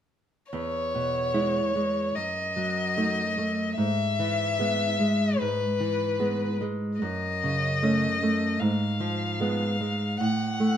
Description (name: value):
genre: romantic duo for violin and classical guitar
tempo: 74 BPM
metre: 4/4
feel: rubato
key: E major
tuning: A4 = 441 Hz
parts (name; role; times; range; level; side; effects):
- rich violin; melody; 0.5-10.8 s; B4 to F#5; -28 LUFS; left 3 dB; none
- nylon-string guitar; accompaniment; 0.5-10.8 s; E2 to E4; -26 LUFS; right 1 dB; none
room: moderate stone room reverb, RT60 0.9 s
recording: band playing live in one room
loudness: -24 LUFS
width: side -9 dB against mid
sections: 0.5-10.8 A section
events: none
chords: 0.5 E; 2.2 D#dim/F#; 3.8 E/G#; 7.0 F#m; 8.6 Fdim/Ab; 10.2 F#m/A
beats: | 0.52 1.35 2.16 2.97 | 3.78 4.59 5.40 6.19 | 7.02 7.82 8.60 9.40 | 10.19